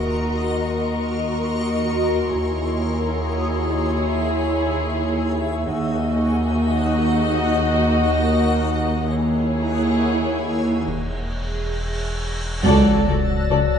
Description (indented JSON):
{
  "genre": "cinematic",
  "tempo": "free time",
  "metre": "none",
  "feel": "none",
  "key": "unclear",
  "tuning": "A4 = 440 Hz",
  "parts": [
    { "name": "muted studio violin section", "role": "melody", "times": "0.0-13.6 s", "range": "Db5 to Eb5", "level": "-28 LUFS", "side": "left 4 dB", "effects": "none" },
    { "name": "muted studio violin section", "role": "second line", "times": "0.0-13.6 s", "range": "Gb4 to Bb4", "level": "-28 LUFS", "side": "left 1 dB", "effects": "none" },
    { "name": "muted studio viola section", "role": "accompaniment", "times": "0.0-13.6 s", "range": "Eb4 to Gb4", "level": "-28 LUFS", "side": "right 3 dB", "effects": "none" },
    { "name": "backwards swelling texture", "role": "sustained chords", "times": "0.0-13.8 s", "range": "Gb4 to Gb5", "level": "-28 LUFS", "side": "left 1 dB", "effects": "built-in reverb" },
    { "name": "muted studio cello section", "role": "bass", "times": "0.0-13.6 s", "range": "C#2 to Eb2", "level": "-25 LUFS", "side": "right 2 dB", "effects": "none" },
    { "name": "muted studio double bass section", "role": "bass", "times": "0.0-13.6 s", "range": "C#2 to Eb2", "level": "-25 LUFS", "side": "equal", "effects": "none" },
    { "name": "sub bass with octave", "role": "drone", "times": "0.0-13.8 s", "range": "Fb1 to Eb2", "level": "-27 LUFS", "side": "equal", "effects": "none" },
    { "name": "sub drop and cymbal swell", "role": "sound effects", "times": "0.0-2.4, 11.0-13.8 s", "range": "none", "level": "-28 LUFS", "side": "equal", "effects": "none" },
    { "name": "muted studio violin section", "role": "texture", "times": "0.0-5.3, 12.6-13.8 s", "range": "Bb5 to A#6", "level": "-34 LUFS", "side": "left 2 dB", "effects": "none" },
    { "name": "warm French horn section", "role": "sustained chords", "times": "12.6-13.8 s", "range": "F#3 to D5", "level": "-24 LUFS", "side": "left 7 dB", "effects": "none" },
    { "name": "folk marimba with medium hard mallets", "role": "riff", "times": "12.6-13.8 s", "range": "C#3", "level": "-25 LUFS", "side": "left 6 dB", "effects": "none" }
  ],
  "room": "wet scoring stage reverb, RT60 1.8 s",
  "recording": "dark, warm production, nothing above 10.7 kHz",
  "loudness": "-18 LUFS",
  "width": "side -7 dB against mid",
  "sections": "0.0-12.6 A section; 12.6-13.8 B section",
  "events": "impact 0.0-2.4, 12.6-13.8; break 10.9-12.6; cymbal swell 11.0-12.6; band accent 12.6-13.5",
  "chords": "0.0 Ebm; 2.4 Dbm/Eb; 5.7 Ebm; 9.1 Dbm/Eb; 10.9 N.C.; 12.6 D/C#"
}